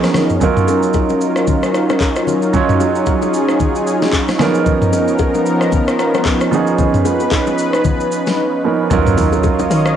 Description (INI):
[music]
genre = amapiano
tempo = 113 BPM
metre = 4/4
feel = swing 58% on 16ths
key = Eb minor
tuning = A4 = 440 Hz
[part]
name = warm grand piano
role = accompaniment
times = 0.0-10.0 s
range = F3 to Db5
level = -17 LUFS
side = right 6 dB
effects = cassette tape
[part]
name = lush unison pad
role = sustained chords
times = 0.0-10.0 s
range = F3 to Eb6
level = -17 LUFS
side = left 1 dB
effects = chorus, sidechain pumping, cassette tape
[part]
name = smooth R&B drum kit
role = drums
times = 0.0-10.0 s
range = handclaps, hi-hat, kick drum, rim click, shaker, snare drum, toms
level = -18 LUFS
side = left 1 dB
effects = cassette tape
[part]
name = congas and bongos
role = percussion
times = 0.1-9.7 s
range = none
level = -24 LUFS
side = left 9 dB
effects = none
[part]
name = deep log drum bass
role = bass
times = 8.9-10.0 s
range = Eb2 to Eb3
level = -18 LUFS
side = left 1 dB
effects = none
[part]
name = impact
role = sound effects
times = 8.9-10.0 s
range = none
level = -25 LUFS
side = left 1 dB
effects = none
[sound]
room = light reverb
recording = home recording on cassette, nothing above 10.7 kHz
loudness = -12 LUFS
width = side -9 dB against mid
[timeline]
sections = 0.0-8.9 A section; 8.9-10.0 B section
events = drop 8.9-10.0; impact 8.9-10.0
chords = 0.4 Ebm9; 4.4 Db13; 8.9 Ebm9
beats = | 0.41 0.94 1.48 2.01 | 2.54 3.07 3.60 4.13 | 4.66 5.19 5.72 6.25 | 6.79 7.32 7.85 8.38 | 8.91 9.44